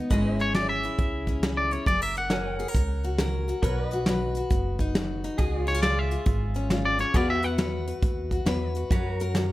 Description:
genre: honky-tonk and classic country.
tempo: 136 BPM.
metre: 4/4.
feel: swing 65% on 8ths.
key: unclear.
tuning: A4 = 440 Hz.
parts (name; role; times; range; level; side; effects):
picked steel-string acoustic guitar; accompaniment; 0.0-9.5 s; G#2 to B4; -30 LUFS; left 2 dB; none.
pedal steel guitar; sustained chords; 0.0-9.5 s; E#4 to G#5; -35 LUFS; equal; none.
upright bass; bass; 0.1-9.5 s; F#1 to F#2; -30 LUFS; right 1 dB; none.
soft brush drum kit; drums; 0.1-9.5 s; hi-hat, kick drum, snare drum; -27 LUFS; equal; none.
twangy electric guitar; melody; 0.4-8.7 s; C#5 to F#5; -28 LUFS; equal; none.
room: light reverb.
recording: none.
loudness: -23 LUFS.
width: side -16 dB against mid.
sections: 0.0-9.5 A section.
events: clean electric guitar solo 0.0-9.5.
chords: 0.1 C#m/G#; 1.9 F#; 3.6 B; 5.4 C#; 7.1 Esus2; 8.9 F#.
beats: | 0.11 0.55 0.99 1.43 | 1.87 2.31 2.75 3.19 | 3.63 4.07 4.51 4.95 | 5.39 5.83 6.27 6.71 | 7.15 7.59 8.03 8.47 | 8.91 9.35.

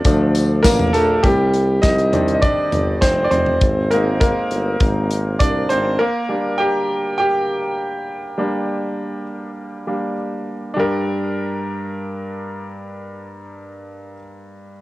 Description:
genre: piano-driven pop.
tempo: 101 BPM.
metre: 4/4.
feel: straight.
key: G minor.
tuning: A4 = 444 Hz.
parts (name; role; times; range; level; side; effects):
bright grand piano; accompaniment; 0.0-14.8 s; G2 to G5; -19 LUFS; equal; none.
warm tuba; bass; 0.0-6.0 s; F1 to D2; -20 LUFS; equal; none.
modern studio drum kit; drums; 0.0-5.8 s; hi-hat, kick drum, snare drum, toms; -19 LUFS; equal; cassette tape.
tambourine; percussion; 0.1-1.1 s; none; -31 LUFS; left 5 dB; none.
room: light reverb, small room ambience.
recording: home recording on cassette.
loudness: -16 LUFS.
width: side -18 dB against mid.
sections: 0.0-1.2 A section; 1.2-10.8 B section; 10.8-13.1 C section.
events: grand piano solo 0.0-1.2, 1.2-10.8.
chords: 0.0 Dm; 1.2 Cmadd9; 3.6 Ab; 6.0 Gm.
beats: 0.05 0.64 | 1.24 1.83 2.42 3.02 | 3.62 4.21 4.81 5.40 | 6.00 6.59 7.19 7.78 | 8.38 8.98 9.57 10.17 | 10.76 11.36 11.96 12.55.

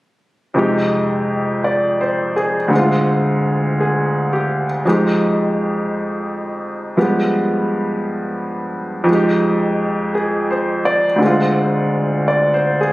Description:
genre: jazz.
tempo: 56 BPM.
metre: 4/4.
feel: swing 68% on 8ths.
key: unclear.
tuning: A4 = 440 Hz.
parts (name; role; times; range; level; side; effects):
clear baby grand piano; accompaniment; 0.5-12.9 s; D2 to D5; -15 LUFS; equal; none.
room: moderate club reverb, RT60 0.5 s.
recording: recorded on a phone in the room, studio reverb.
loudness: -15 LUFS.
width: side -18 dB against mid.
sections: 0.6-12.9 A section.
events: none.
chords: 0.6 Fm9; 2.7 Dm7b5; 4.8 Fm9; 7.0 G7b9; 9.1 Fm9; 11.2 Dm7b5.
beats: | 0.56 1.63 2.71 3.78 | 4.85 5.91 6.96 8.02 | 9.08 10.14 11.21 12.27.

